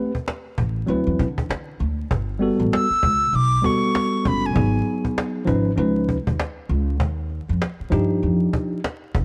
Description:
hip hop, jazz-hop; 98 BPM; 4/4; swing 60% on 16ths; A4 = 443 Hz
tine electric piano; accompaniment; 0.0-8.8 s; E#3 to B4; -25 LUFS; equal; overdrive
cajon; drums; 0.1-9.2 s; -28 LUFS; equal
upright bass; bass; 0.6-9.2 s; E#1 to D3; -26 LUFS; equal
breathy silver concert flute; melody; 2.7-5.1 s; G#5 to E6; -24 LUFS; equal
light reverb, small room ambience; dark, warm production, vinyl crackle; -22 LUFS; mono
0.0-9.2 A section
0.0 Am9; 0.9 D13; 2.1 Gmaj9; 4.6 G#m7; 5.8 C#9; 7.0 D#maj9

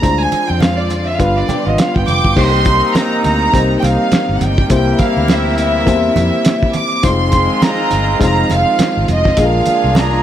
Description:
lush 1970s-style soul; 103 BPM; 4/4; swing 58% on 16ths; C minor; A4 = 439 Hz
warm studio violin section; melody; 0.0-10.2 s; D5 to D6; -16 LUFS; right 2 dB
overdriven reed electric piano; accompaniment; 0.0-10.2 s; G3 to C5; -18 LUFS; left 4 dB
rich studio string section; sustained chords; 0.0-10.2 s; C3 to F4; -25 LUFS; right 1 dB
vintage muted fingered electric bass; bass; 0.0-10.2 s; F1 to F2; -17 LUFS; equal
cloth-damped thuddy drum kit; drums; 0.0-10.1 s; crash cymbal, hi-hat, kick drum, snare drum; -16 LUFS; equal
congas; percussion; 0.3-10.1 s; -24 LUFS; right 5 dB
electric guitar through a small old amp; riff; 1.2-2.3 s; B3 to B4; -22 LUFS; right 6 dB
clear horn section; stabs; 2.4-10.2 s; Ab3 to Ab4; -22 LUFS; right 1 dB
light reverb, small room ambience; -11 LUFS; side -10 dB against mid
0.0-2.4 A section; 2.4-10.2 B section
violin section solo 0.0-2.4
0.0 Dm7b5; 1.2 G7; 2.4 Cm7; 4.7 C7; 7.0 Fm7; 9.4 Bb7

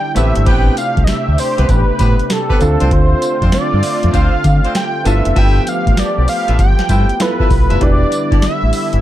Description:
R&B, new jack swing; 98 BPM; 4/4; swing 66% on 16ths; D dorian; A4 = 441 Hz
wide unison lead; melody; 0.0-9.0 s; A4 to G5; -18 LUFS; right 1 dB; tape echo
clear baby grand piano; accompaniment; 0.0-9.0 s; A3 to B4; -24 LUFS; right 2 dB
sweeping resonant pad; sustained chords; 0.0-9.0 s; C3 to G4; -22 LUFS; left 1 dB; chorus
clear horn section; stabs; 0.2-8.4 s; B3 to E5; -24 LUFS; left 1 dB
deep dub fingered electric bass; bass; 0.2-9.0 s; E1 to D3; -14 LUFS; equal
booming analog drum machine; drums; 0.2-9.0 s; hi-hat, kick drum, snare drum, tambourine; -16 LUFS; equal
digital ambience; dark, warm production; -11 LUFS; side -13 dB against mid
0.0-9.0 A section
0.2 Am9; 2.6 Dm7; 5.1 G13; 7.8 Em7

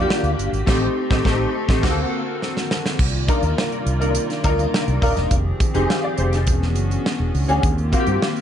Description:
polished 1980s jazz-funk pop; 103 BPM; 4/4; straight; A4 = 436 Hz
clear grand piano; accompaniment; 0.0-8.4 s; A3 to F5; -22 LUFS; left 2 dB; ensemble chorus
hollow soft pad; sustained chords; 0.0-8.4 s; C3 to D5; -28 LUFS; equal; chorus
mellow fretless electric bass; bass; 0.0-8.2 s; Eb1 to G2; -21 LUFS; equal
modern studio drum kit; drums; 0.1-8.4 s; crash cymbal, hi-hat, kick drum, snare drum; -22 LUFS; equal
studio ambience; dark, warm production, nothing above 11.0 kHz; -18 LUFS; side -9 dB against mid
0.0-3.0 A section; 3.0-8.4 B section
band accent 0.7-3.0; drum fill 2.4-3.0
0.0 Ebmaj9; 0.7 Am7b5; 1.8 D7b13; 3.0 Cm11; 5.3 Fm9; 6.5 E13; 7.6 Eb69

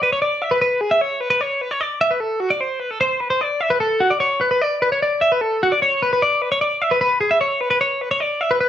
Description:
rock; 150 BPM; 4/4; straight; A4 = 440 Hz
twelve-string electric guitar; solo; 0.0-8.7 s; F#4 to E5; -17 LUFS; equal
moderate studio reverb, RT60 0.7 s; worn, warbling old tape, cassette tape, warbly pitch drift, studio reverb; -17 LUFS; side -10 dB against mid
0.0-8.7 A section

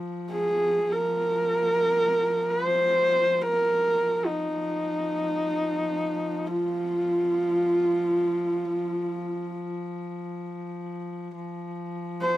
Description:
mongolian traditional, Mongolian folk; free time; F yu mode; A4 = 439 Hz
clear horsehead fiddle; drone; 0.0-12.4 s; F3; -33 LUFS; left 2 dB; stereo widening
dark horsehead fiddle; melody; 0.3-12.4 s; Eb4 to C5; -23 LUFS; equal
light reverb; dry, close 1970s-style studio recording; -24 LUFS; side -15 dB against mid
0.0-11.3 A section; 11.3-12.4 A section

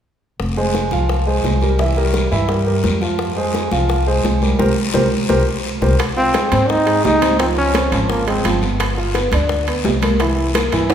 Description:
latin, salsa; 171 BPM; 4/4; straight; F minor; A4 = 441 Hz
upright bass; bass; 0.4-10.9 s; F1 to Ab2; -20 LUFS; equal
bongos; percussion; 0.4-10.9 s; -26 LUFS; left 5 dB
congas; percussion; 0.4-10.9 s; -25 LUFS; right 2 dB
guiro; percussion; 0.4-10.9 s; -29 LUFS; left 4 dB
dark grand piano; accompaniment; 0.6-10.9 s; E3 to F5; -19 LUFS; right 1 dB
timbales; percussion; 6.0-10.9 s; -24 LUFS; right 4 dB
bright trombone; melody; 6.2-8.6 s; Bb3 to Eb4; -17 LUFS; equal
wet recital hall reverb, RT60 1.7 s; recorded in a church or concert hall; -14 LUFS; side -9 dB against mid
0.4-6.0 A section; 6.0-10.9 B section
band accent 4.6-6.0
0.4 Fm; 1.8 C7; 3.2 Fm; 4.6 C5; 6.0 Fm7; 7.4 Dbmaj7; 8.8 G7; 10.2 C7

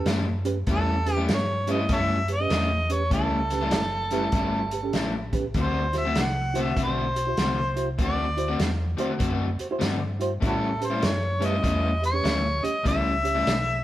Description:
electric blues shuffle; 98 BPM; 4/4; swing 64% on 8ths; A mixolydian; A4 = 445 Hz
mellow harmonica; melody; 0.0-13.8 s; E4 to F#5; -27 LUFS; equal; overdrive
reed electric piano; accompaniment; 0.0-13.4 s; C#4 to C#5; -32 LUFS; right 4 dB; overdrive, fast tremolo
hollow-body short-scale fingered electric bass; bass; 0.0-13.8 s; F#1 to A2; -29 LUFS; equal
overdriven semi-hollow guitar; riff; 0.1-13.5 s; A2 to F#4; -29 LUFS; left 2 dB; spring reverb
vintage drum kit; drums; 0.1-13.7 s; hi-hat, kick drum, snare drum; -29 LUFS; equal
moderate stone room reverb, RT60 1.3 s; band playing live in one room; -22 LUFS; side -14 dB against mid
0.0-13.8 A section
0.0 A7; 5.6 D7; 10.4 A7

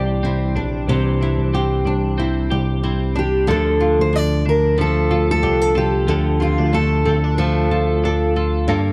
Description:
acoustic pop; 92 BPM; 4/4; swing 55% on 16ths; A4 = 440 Hz
fingerpicked steel-string acoustic guitar; melody; 0.0-8.3 s; F4 to D5; -23 LUFS; equal
flamenco guitar; accompaniment; 0.0-8.9 s; G2 to A4; -24 LUFS; equal
twelve-string electric guitar; arpeggios; 0.0-8.9 s; E3 to A4; -31 LUFS; equal; analog chorus
bell-like tine electric piano; bass; 0.0-8.9 s; Bb1 to G2; -22 LUFS; equal; ensemble chorus
little or no reverb; dry, close 1970s-style studio recording; -18 LUFS; mono
0.0-3.5 A section; 3.5-8.9 B section
0.0 Cadd9; 3.5 Dm

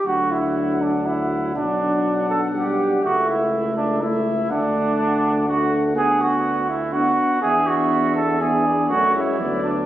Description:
classical, brass quintet; 122 BPM; 3/4; straight; D major; A4 = 440 Hz
warm flugelhorn; second line; 0.0-9.9 s; D4 to A4; -21 LUFS; right 2 dB
mellow trumpet; melody; 0.1-9.9 s; C#5 to F#5; -28 LUFS; left 2 dB
mellow French horn; accompaniment; 0.1-9.9 s; A3 to D4; -25 LUFS; left 3 dB
warm trombone; accompaniment; 0.1-9.9 s; F#3 to B3; -27 LUFS; equal
warm tuba; bass; 0.1-9.9 s; B1 to F#2; -28 LUFS; right 1 dB
moderate concert hall reverb, RT60 1.8 s; recorded on a phone in the room, studio reverb, compression; -18 LUFS; side -13 dB against mid
0.1-9.9 A section
0.1 D; 1.6 Bm; 3.0 A/C#; 4.5 D; 6.0 Bm/D; 7.4 E7; 8.9 F#m

